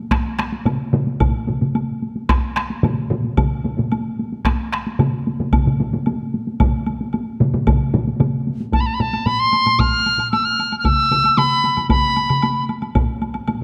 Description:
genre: japanese traditional, taiko drum ensemble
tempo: 112 BPM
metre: 4/4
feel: straight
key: unclear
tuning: A4 = 444 Hz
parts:
  - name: solo taiko drums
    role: percussion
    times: 0.1-13.6 s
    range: none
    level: -26 LUFS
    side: equal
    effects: none
  - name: solo taiko drums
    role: percussion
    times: 0.1-13.1 s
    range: none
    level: -24 LUFS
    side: equal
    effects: none
  - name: taiko ensemble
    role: percussion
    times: 0.1-13.6 s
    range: none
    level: -26 LUFS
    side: equal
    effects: none
  - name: taiko ensemble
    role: percussion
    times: 0.1-12.4 s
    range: none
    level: -25 LUFS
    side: equal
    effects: none
  - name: woodblock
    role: percussion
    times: 0.1-13.6 s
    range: none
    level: -33 LUFS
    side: equal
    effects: none
  - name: bright reedy piccolo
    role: melody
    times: 8.7-12.7 s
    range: A5 to F6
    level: -19 LUFS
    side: equal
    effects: none
room: wet concert hall reverb, RT60 1.6 s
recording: none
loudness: -19 LUFS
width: mono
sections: 0.0-8.7 A section; 8.7-13.6 B section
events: speeding up 0.0-13.6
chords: none

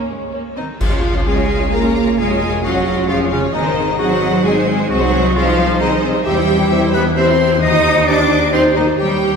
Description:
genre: cinematic, playful, whimsical film cue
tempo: 132 BPM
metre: 3/4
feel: straight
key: Db major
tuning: A4 = 438 Hz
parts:
  - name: rich studio violin section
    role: melody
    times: 0.0-9.4 s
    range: C5 to F5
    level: -25 LUFS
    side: left 4 dB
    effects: none
  - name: rich studio violin section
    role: second line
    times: 0.0-9.4 s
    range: Db4 to Eb6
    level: -24 LUFS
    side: left 3 dB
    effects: none
  - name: rich studio viola section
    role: accompaniment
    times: 0.0-9.4 s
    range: Ab3 to C5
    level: -20 LUFS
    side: right 2 dB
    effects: none
  - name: clear clarinet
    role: second line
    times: 0.6-9.4 s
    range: Db4 to Eb5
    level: -21 LUFS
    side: left 1 dB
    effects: none
  - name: clear studio cello section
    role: bass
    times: 0.6-9.4 s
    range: Db3 to Eb4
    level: -18 LUFS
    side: right 1 dB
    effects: none
  - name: rich studio double bass section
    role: bass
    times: 0.8-9.4 s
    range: F1 to E2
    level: -21 LUFS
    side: right 1 dB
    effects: none
  - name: clash cymbals, concert bass drum and cymbal swell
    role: percussion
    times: 0.8-1.7, 9.0-9.4 s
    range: none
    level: -23 LUFS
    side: equal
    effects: none
  - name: warm French horn section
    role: sustained chords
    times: 1.3-8.7 s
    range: Db4 to C5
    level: -22 LUFS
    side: left 2 dB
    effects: none
room: wet concert hall reverb, RT60 2.3 s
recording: recorded in a church or concert hall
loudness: -12 LUFS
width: side -6 dB against mid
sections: 0.8-9.4 A section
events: band accent 0.8-1.3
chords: 0.0 Db5; 0.8 Db; 2.2 Db/F; 3.5 Ab; 4.9 Ab/C; 6.3 C/E; 7.6 Cm/Eb

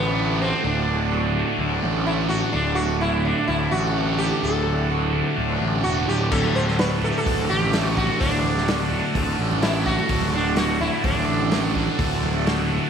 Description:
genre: psychedelic rock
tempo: 127 BPM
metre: 4/4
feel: straight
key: D major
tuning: A4 = 441 Hz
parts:
  - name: sitar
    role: melody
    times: 0.0-12.9 s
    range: B3 to C5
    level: -26 LUFS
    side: right 1 dB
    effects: slapback echo
  - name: overdriven combo organ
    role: sustained chords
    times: 0.0-12.9 s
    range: A4 to E6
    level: -31 LUFS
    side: right 10 dB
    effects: none
  - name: thick fuzz guitar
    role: riff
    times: 0.0-12.9 s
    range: D2 to F#4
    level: -24 LUFS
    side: equal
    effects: distortion, phaser
  - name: fuzz picked electric bass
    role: bass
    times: 0.0-12.8 s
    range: D1 to A1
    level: -25 LUFS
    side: left 1 dB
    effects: overdrive
  - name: vintage drum kit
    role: drums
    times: 6.3-12.6 s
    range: crash cymbal, hi-hat, kick drum, snare drum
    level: -27 LUFS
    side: equal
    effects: none
  - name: congas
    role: percussion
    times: 6.4-12.8 s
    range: none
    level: -35 LUFS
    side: right 10 dB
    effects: none
room: light reverb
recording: 1960s-style stereo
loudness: -19 LUFS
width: side -7 dB against mid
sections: 0.0-12.9 A section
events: none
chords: 0.0 D

